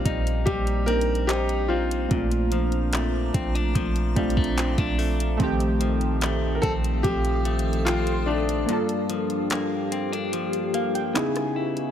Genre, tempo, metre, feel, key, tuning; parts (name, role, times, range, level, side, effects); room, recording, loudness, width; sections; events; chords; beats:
contemporary R&B; 73 BPM; 4/4; straight; Bb major; A4 = 440 Hz
clear grand piano; melody; 0.0-9.9 s; D4 to Bb4; -28 LUFS; left 1 dB; ping-pong delay
warm analog keys; accompaniment; 0.0-11.9 s; Eb3 to Ab5; -28 LUFS; right 2 dB; chorus
granular cloud pad; sustained chords; 0.0-11.9 s; G4 to Eb6; -33 LUFS; left 1 dB; built-in reverb, sidechain pumping
clean electric guitar; arpeggios; 0.0-11.9 s; F2 to Fb4; -30 LUFS; left 6 dB
glassy wavetable pluck; texture; 0.0-2.5, 7.9-9.5 s; Bb4 to Eb6; -40 LUFS; left 1 dB
warm 808-style bass; bass; 0.1-8.6 s; Bb1; -26 LUFS; equal
smooth R&B drum kit; drums; 0.1-11.9 s; handclaps, hi-hat, kick drum, rim click; -28 LUFS; equal
digital ambience; -22 LUFS; side -9 dB against mid
0.0-11.9 A section
break 8.7-11.9; synth keys fill 10.3-11.9
0.0 Cm7/Bb; 2.1 Bbmaj7; 8.7 Gm7; 11.2 Dbm7
0.47 1.29 | 2.11 2.93 3.75 4.58 | 5.40 6.22 7.04 7.86 | 8.69 9.51 10.33 11.15